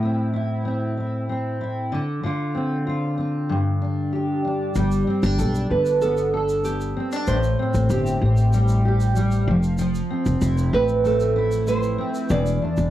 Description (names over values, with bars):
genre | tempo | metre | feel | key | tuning
acoustic pop | 95 BPM | 4/4 | straight | unclear | A4 = 439 Hz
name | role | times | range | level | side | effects
fingerpicked steel-string acoustic guitar | accompaniment | 0.0-12.9 s | E2 to A4 | -23 LUFS | equal | double-tracked left and right, cassette tape
upright bass | bass | 4.8-12.9 s | E1 to B1 | -21 LUFS | equal | none
egg shaker | percussion | 4.8-12.9 s | none | -44 LUFS | right 3 dB | none
nylon-string guitar | melody | 5.7-12.9 s | G4 to D5 | -22 LUFS | right 3 dB | none
room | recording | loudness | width
wet studio reverb, RT60 0.6 s | home recording on cassette | -19 LUFS | side -13 dB against mid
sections
0.0-4.8 A section; 4.8-12.9 B section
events
none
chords
0.0 Am; 1.9 Dm7; 3.5 G5; 4.8 Gadd9; 7.3 Am7; 9.5 Fmaj7; 12.3 E7(no3)